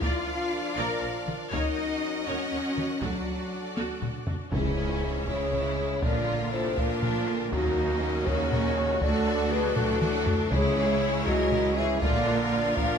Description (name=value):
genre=cinematic, epic orchestral film score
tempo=80 BPM (dotted quarters)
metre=6/8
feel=straight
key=unclear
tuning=A4 = 439 Hz
part: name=clear symphonic violin section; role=melody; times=0.0-13.0 s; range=A#3 to A#5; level=-37 LUFS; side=left 2 dB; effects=none
part: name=clear symphonic violin section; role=second line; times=0.0-13.0 s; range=A#3 to F#5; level=-37 LUFS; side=left 2 dB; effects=none
part: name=rich symphonic viola section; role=accompaniment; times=0.0-13.0 s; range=C#3 to D5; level=-37 LUFS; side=right 1 dB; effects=none
part: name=dark French horn section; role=sustained chords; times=0.0-13.0 s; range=F#3 to E#5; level=-30 LUFS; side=left 3 dB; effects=none
part: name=mellow trombone section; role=sustained chords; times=0.0-13.0 s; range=F#2 to D4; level=-37 LUFS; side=right 4 dB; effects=none
part: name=rich symphonic string section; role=sustained chords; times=0.0-13.0 s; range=C#4 to E#5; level=-36 LUFS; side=left 1 dB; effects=none
part: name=clear symphonic double bass section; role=bass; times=0.0-13.0 s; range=A#1 to D#2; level=-34 LUFS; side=right 4 dB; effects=none
part: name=rich symphonic cello section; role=bass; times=0.0-13.0 s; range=C#2 to A#4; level=-33 LUFS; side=right 3 dB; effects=none
part: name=taiko ensemble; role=drums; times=0.0-13.0 s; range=none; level=-32 LUFS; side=equal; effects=none
part: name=mellow hollow silver concert flute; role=second line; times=4.5-13.0 s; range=D#4 to D#5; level=-35 LUFS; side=left 1 dB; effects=none
part: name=timpani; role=percussion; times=4.5-5.2, 10.5-11.2 s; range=C#3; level=-34 LUFS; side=left 1 dB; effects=none
part: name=impact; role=sound effects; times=4.5-6.0 s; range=none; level=-38 LUFS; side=equal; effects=none
room=moderate scoring stage reverb, RT60 1.9 s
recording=none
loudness=-24 LUFS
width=side -7 dB against mid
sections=0.0-4.5 A section; 4.5-13.0 B section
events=drum fill 3.8-4.5, 9.8-10.5; impact 4.5-6.0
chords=0.0 A#; 1.5 D#m7; 3.0 D; 4.5 C#m; 6.0 A#; 7.5 D#m7; 9.0 D; 10.5 C#m; 12.0 A#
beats=| 0.02 0.77 | 1.52 2.27 | 3.02 3.77 | 4.52 5.27 | 6.02 6.77 | 7.52 8.27 | 9.02 9.77 | 10.52 11.27 | 12.02 12.77